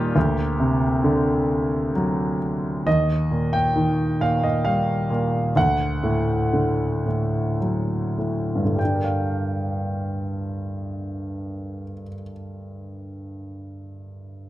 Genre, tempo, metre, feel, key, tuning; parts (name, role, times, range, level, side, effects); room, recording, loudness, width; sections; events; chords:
classical, lyrical solo piano; 48-69 BPM; 3/4; rubato; G minor; A4 = 440 Hz
clear grand piano; solo; 0.0-14.5 s; D2 to G5; -21 LUFS; equal
moderate recital hall reverb, RT60 1.5 s; dark, warm production; -20 LUFS; side -15 dB against mid
0.0-2.9 A section; 2.9-8.8 B section; 8.8-12.4 C section
slowing down 2.9-8.8
0.2 D7; 2.9 Ebadd9; 5.6 D; 8.8 Gm7